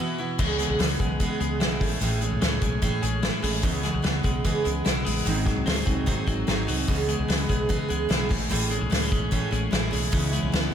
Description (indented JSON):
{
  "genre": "jangly indie pop",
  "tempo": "148 BPM",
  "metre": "4/4",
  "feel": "straight",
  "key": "C# minor",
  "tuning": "A4 = 445 Hz",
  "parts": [
    { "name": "picked steel-string acoustic guitar", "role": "accompaniment", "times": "0.0-10.7 s", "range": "G#2 to G#4", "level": "-28 LUFS", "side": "right 4 dB", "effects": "slapback echo" },
    { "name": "twelve-string electric guitar", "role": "arpeggios", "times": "0.0-10.7 s", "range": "G#2 to F#4", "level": "-29 LUFS", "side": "left 3 dB", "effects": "spring reverb, tape echo" },
    { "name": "woody fretless electric bass", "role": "bass", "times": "0.4-10.7 s", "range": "G#1 to C#2", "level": "-29 LUFS", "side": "equal", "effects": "wide subtle chorus" },
    { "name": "loose indie drum kit", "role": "drums", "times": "0.4-10.6 s", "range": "crash cymbal, hi-hat, kick drum, snare drum", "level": "-27 LUFS", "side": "left 1 dB", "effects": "none" }
  ],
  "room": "light reverb",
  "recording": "none",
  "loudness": "-22 LUFS",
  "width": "side -9 dB against mid",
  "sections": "0.4-10.7 A section",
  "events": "break 0.0-0.4",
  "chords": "0.4 C#m7; 1.8 Amaj7; 5.3 G#7; 6.9 C#m7; 8.3 Amaj7; 10.1 C#m7"
}